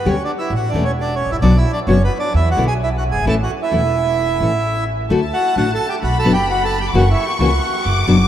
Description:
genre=tango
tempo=131 BPM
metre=4/4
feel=rubato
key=unclear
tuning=A4 = 440 Hz
part: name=bandoneon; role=melody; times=0.0-8.3 s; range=B3 to A5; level=-19 LUFS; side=right 2 dB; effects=slapback echo
part: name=nylon-string guitar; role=accompaniment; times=0.1-8.2 s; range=B2 to G4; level=-20 LUFS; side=left 3 dB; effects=none
part: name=upright bass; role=bass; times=0.1-8.3 s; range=E1 to E2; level=-18 LUFS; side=right 1 dB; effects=none
part: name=clear studio violin section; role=second line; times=5.1-8.3 s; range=A5 to D6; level=-22 LUFS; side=left 2 dB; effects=none
room=moderate huge ambient reverb, RT60 8.8 s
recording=in a vast, echoing space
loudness=-14 LUFS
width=side -11 dB against mid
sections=0.0-8.3 A section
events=none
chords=0.0 G; 0.5 A; 1.4 Bm; 2.3 E; 3.3 A; 5.1 D; 6.0 B5; 6.9 F#7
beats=0.06 0.51 0.97 | 1.43 1.88 2.34 2.80 | 3.25 3.71 4.17 4.64 | 5.10 5.56 6.02 6.48 | 6.93 7.39 7.84

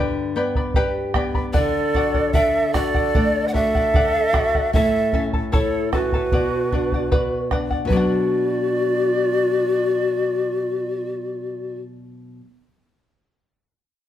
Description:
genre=andean folk, Andean ensemble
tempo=76 BPM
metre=4/4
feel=straight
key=B minor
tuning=A4 = 441 Hz
part: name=charango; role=accompaniment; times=0.0-12.6 s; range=E4 to B5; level=-26 LUFS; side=left 1 dB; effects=none
part: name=nylon-string guitar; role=accompaniment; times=0.0-12.5 s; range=G2 to A4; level=-26 LUFS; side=left 3 dB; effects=none
part: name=bombo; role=percussion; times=0.6-8.3 s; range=none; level=-22 LUFS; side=right 1 dB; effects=none
part: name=breathy polished pan flute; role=melody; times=1.5-11.8 s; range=F#4 to F#5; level=-21 LUFS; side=left 1 dB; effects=none
part: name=breathy bright large quena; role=second line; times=1.5-11.8 s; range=F#4 to D5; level=-26 LUFS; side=right 3 dB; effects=none
room=moderate large studio reverb, RT60 1.0 s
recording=band playing live in one room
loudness=-18 LUFS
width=side -11 dB against mid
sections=0.0-7.9 A section; 7.9-11.0 B section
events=none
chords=0.0 G; 1.6 D; 4.7 A; 6.3 Bm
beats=0.75 | 1.55 2.35 3.14 3.94 | 4.73 5.52 6.31 7.10 | 7.89 8.68 9.46 10.24

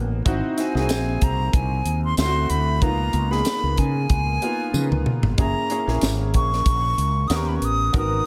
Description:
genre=polished 1980s jazz-funk pop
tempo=94 BPM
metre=4/4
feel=swing 54% on 16ths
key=G# minor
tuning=A4 = 441 Hz
part: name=clear concert grand piano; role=accompaniment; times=0.0-8.3 s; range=A3 to A#4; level=-29 LUFS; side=equal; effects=analog chorus
part: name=mellow fretless electric bass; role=bass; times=0.0-8.2 s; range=F#1 to C#3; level=-26 LUFS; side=equal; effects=none
part: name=crisp fusion drum kit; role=drums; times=0.3-8.1 s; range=hi-hat, kick drum, snare drum, toms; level=-26 LUFS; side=equal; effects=gated reverb
part: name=breathy silver concert flute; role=melody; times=0.6-8.3 s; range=G5 to D#6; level=-28 LUFS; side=equal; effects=none
part: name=tambourine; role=percussion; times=0.9-7.5 s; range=none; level=-38 LUFS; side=equal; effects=none
room=studio reverb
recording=none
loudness=-22 LUFS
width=mono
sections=0.0-8.3 A section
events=drum fill 4.7-5.4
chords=0.3 G#7b13; 2.2 D9; 2.8 C#13; 5.4 F#9 (rootless); 7.3 D#7b13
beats=| 0.26 0.90 1.54 2.18 | 2.82 3.46 4.10 4.74 | 5.38 6.02 6.66 7.30 | 7.94

